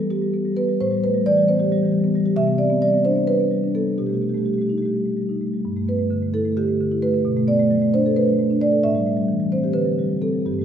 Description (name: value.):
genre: classical, contemporary piece for solo marimba.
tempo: 262 BPM (eighths).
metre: 7/8.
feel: rubato.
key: G major from 5.6 s.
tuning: A4 = 439 Hz.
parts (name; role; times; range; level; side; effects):
marimba with soft mallets; solo; 0.0-10.6 s; G2 to E5; -18 LUFS; equal; none.
room: wet concert hall reverb, RT60 1.7 s.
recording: recorded in a church or concert hall.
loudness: -18 LUFS.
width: side -9 dB against mid.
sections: 0.0-10.6 A section.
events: none.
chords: 0.0 Em; 0.8 Asus2; 2.4 Csus2; 4.0 Baug7; 5.6 G69; 7.2 Bm7; 8.8 Am7; 9.7 D6.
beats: 0.10 0.34 0.57 | 0.80 1.03 1.25 1.48 1.70 1.92 2.15 | 2.37 2.59 2.82 3.04 3.27 3.50 3.74 | 3.97 4.21 4.45 4.68 4.92 5.16 5.40 | 5.63 5.87 6.09 6.32 6.55 6.79 7.02 | 7.25 7.47 7.70 7.93 8.15 8.38 8.60 | 8.83 9.05 9.28 9.51 9.74 9.97 10.21 | 10.45.